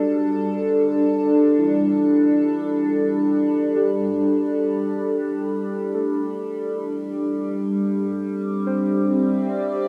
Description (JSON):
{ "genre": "ambient", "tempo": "55 BPM", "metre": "3/4", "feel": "straight", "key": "unclear", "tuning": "A4 = 442 Hz", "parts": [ { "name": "evolving wavetable pad", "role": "sustained chords", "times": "0.0-9.9 s", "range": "G3 to E5", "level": "-22 LUFS", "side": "equal", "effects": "chorus, built-in reverb, phaser, cassette tape" }, { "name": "muted felt-like synth keys", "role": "arpeggios", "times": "0.0-9.9 s", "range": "E4 to C5", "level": "-33 LUFS", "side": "equal", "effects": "chorus, cassette tape, analog delay" } ], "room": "wet booth ambience, RT60 0.2 s", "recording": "home recording on cassette", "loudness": "-21 LUFS", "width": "mono", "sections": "0.0-9.9 A section", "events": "fade-in on synth keys 0.0-9.9", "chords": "0.0 Gmaj9; 7.6 C69/G", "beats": "| 1.03 2.12 3.21 | 4.30 5.40 6.49 | 7.58 8.67 9.76" }